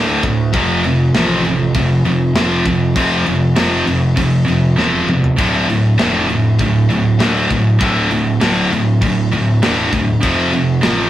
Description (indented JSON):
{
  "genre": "heavy metal",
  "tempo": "99 BPM",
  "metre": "4/4",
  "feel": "straight",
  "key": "D minor",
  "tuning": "A4 = 440 Hz",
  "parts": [
    { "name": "high-gain distorted guitar", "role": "riff", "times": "0.0-11.1 s", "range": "D2 to F3", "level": "-21 LUFS", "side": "left 6 dB", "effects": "distortion" },
    { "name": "scooped high-gain guitar", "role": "riff", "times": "0.0-11.1 s", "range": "D2 to F3", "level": "-14 LUFS", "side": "right 2 dB", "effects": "distortion" },
    { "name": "fuzz picked electric bass", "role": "bass", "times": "0.0-11.1 s", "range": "D1 to D2", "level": "-21 LUFS", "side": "left 1 dB", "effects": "overdrive" },
    { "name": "tight metal drum kit", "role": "drums", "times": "0.2-11.0 s", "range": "crash cymbal, kick drum, snare drum, toms", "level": "-21 LUFS", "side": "equal", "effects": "none" }
  ],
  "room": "moderate studio reverb, RT60 0.5 s",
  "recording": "rough rehearsal-room recording",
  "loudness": "-12 LUFS",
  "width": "side -13 dB against mid",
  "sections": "0.0-11.1 A section",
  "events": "drum fill 4.8-5.4",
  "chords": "0.0 D5; 0.5 F5; 5.4 D5; 10.2 F"
}